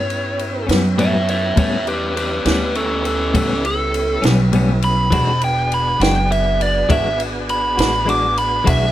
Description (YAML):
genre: slow blues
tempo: 68 BPM (dotted quarters)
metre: 12/8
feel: straight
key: unclear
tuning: A4 = 440 Hz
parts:
  - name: biting lead guitar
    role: melody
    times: 0.0-8.9 s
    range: C#4 to D6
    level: -19 LUFS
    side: right 1 dB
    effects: overdrive
  - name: tonewheel organ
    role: sustained chords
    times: 0.0-8.9 s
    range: G3 to A4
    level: -26 LUFS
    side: right 1 dB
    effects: slow rotary speaker
  - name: upright bass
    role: bass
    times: 0.0-8.9 s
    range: E1 to G2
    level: -20 LUFS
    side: equal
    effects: none
  - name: compact cocktail drum kit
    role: drums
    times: 0.1-8.8 s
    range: kick drum, ride cymbal, snare drum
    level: -23 LUFS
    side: equal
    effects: none
  - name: clean electric guitar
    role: accompaniment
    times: 0.7-8.8 s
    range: A2 to F#4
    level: -21 LUFS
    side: left 3 dB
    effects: tremolo
room: moderate small room ambience, RT60 0.5 s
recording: none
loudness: -15 LUFS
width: side -13 dB against mid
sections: 0.0-8.9 A section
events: lead electric guitar solo 0.0-8.9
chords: 0.0 A9; 5.1 E9